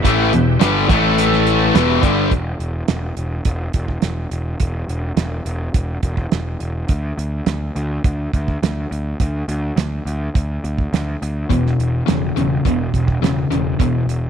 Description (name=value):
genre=classic rock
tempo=104 BPM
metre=4/4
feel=straight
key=E minor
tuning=A4 = 440 Hz
part: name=overdriven tonewheel organ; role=sustained chords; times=0.0-2.3 s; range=E4 to A5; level=-27 LUFS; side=equal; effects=none
part: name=distorted electric guitar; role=riff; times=0.0-2.3, 11.5-14.3 s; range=E2 to A3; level=-18 LUFS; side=left 11 dB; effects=overdrive
part: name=distorted electric guitar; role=riff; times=0.0-2.3, 11.5-14.3 s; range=E2 to A3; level=-20 LUFS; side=right 8 dB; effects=distortion
part: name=fuzz picked electric bass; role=bass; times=0.0-14.3 s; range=E1 to D2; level=-21 LUFS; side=equal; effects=overdrive
part: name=damped 70s drum kit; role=drums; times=0.0-14.2 s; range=hi-hat, kick drum, snare drum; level=-19 LUFS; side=right 3 dB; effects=none
room=light reverb, small room ambience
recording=1960s-style stereo with parts hard left and right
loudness=-16 LUFS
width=side -8 dB against mid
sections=0.0-2.3 A section; 2.3-14.3 B section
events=none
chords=0.0 Em; 0.9 A5; 1.7 Em; 2.3 N.C.; 11.5 E5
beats=| 0.04 0.61 1.18 1.75 | 2.32 2.89 3.46 4.03 | 4.60 5.18 5.75 6.33 | 6.90 7.47 8.05 8.62 | 9.20 9.77 10.35 10.93 | 11.50 12.08 12.65 13.23 | 13.81